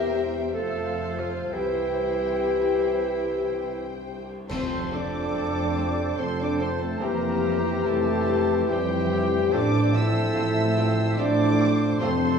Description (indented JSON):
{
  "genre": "classical, slow romantic movement for symphony orchestra",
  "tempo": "58-73 BPM",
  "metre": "3/4",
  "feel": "rubato",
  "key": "F major",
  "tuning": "A4 = 440 Hz",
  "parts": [
    { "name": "muted symphonic violin section", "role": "melody", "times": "0.0-12.4 s", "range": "E4 to E6", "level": "-36 LUFS", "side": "left 2 dB", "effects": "none" },
    { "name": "bright oboe", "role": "second line", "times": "0.0-12.4 s", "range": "E4 to C5", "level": "-39 LUFS", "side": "right 1 dB", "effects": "none" },
    { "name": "dark clarinet", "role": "second line", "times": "0.0-12.4 s", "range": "G4 to C5", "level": "-35 LUFS", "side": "left 5 dB", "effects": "none" },
    { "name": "large flute ensemble", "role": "second line", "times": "0.0-12.4 s", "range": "G4 to G5", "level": "-33 LUFS", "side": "left 1 dB", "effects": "none" },
    { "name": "muted chamber violin section", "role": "second line", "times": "0.0-12.1 s", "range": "E4 to G5", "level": "-40 LUFS", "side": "left 3 dB", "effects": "none" },
    { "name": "dark bassoon", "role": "accompaniment", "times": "0.0-12.4 s", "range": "E3 to Bb3", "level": "-31 LUFS", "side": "right 5 dB", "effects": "none" },
    { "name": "muted symphonic viola section", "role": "accompaniment", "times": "0.0-12.1 s", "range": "G3 to C5", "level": "-34 LUFS", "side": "left 4 dB", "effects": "none" },
    { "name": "mellow French horn section", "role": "sustained chords", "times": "0.0-12.4 s", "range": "G3 to E5", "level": "-28 LUFS", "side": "left 3 dB", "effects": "none" },
    { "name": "muted studio cello section", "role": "bass", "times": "0.0-12.4 s", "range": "C2 to A2", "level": "-31 LUFS", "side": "right 1 dB", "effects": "none" },
    { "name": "muted symphonic double bass section", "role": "bass", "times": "0.0-12.4 s", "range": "E1 to C2", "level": "-32 LUFS", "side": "right 3 dB", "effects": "none" },
    { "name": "cymbal swell, clash cymbals and concert bass drum", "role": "percussion", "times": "1.5-6.1 s", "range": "none", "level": "-42 LUFS", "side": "left 1 dB", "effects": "none" },
    { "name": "warm trombone section", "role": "sustained chords", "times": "4.5-12.4 s", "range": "E3 to C4", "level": "-33 LUFS", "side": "right 3 dB", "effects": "none" },
    { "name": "warm trumpet", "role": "stabs", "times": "4.5-12.4 s", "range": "G4 to A4", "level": "-32 LUFS", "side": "equal", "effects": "none" }
  ],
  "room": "wet recital hall reverb, RT60 1.7 s",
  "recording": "studio reverb",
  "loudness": "-22 LUFS",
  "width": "side -6 dB against mid",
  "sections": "0.0-4.5 A section; 4.5-12.4 B section",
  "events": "band accent 4.5-5.3",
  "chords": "0.0 C; 0.6 F; 1.5 C; 4.5 F; 7.0 C7/F; 9.5 F/A"
}